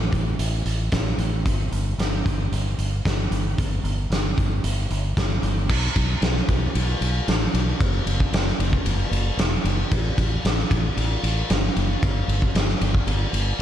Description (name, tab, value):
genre	rock, shoegaze and dream pop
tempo	114 BPM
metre	4/4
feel	straight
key	unclear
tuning	A4 = 440 Hz
part	modern bright fingered electric bass	bass	0.0-13.6 s	E1 to B1	-23 LUFS	equal	none
part	big rock drum kit	drums	0.1-13.5 s	crash cymbal, hi-hat, kick drum, ride cymbal, snare drum	-23 LUFS	equal	none
room	little or no reverb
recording	dark, warm production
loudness	-20 LUFS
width	side -11 dB against mid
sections	0.0-5.7 A section; 5.7-13.6 B section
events	none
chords	none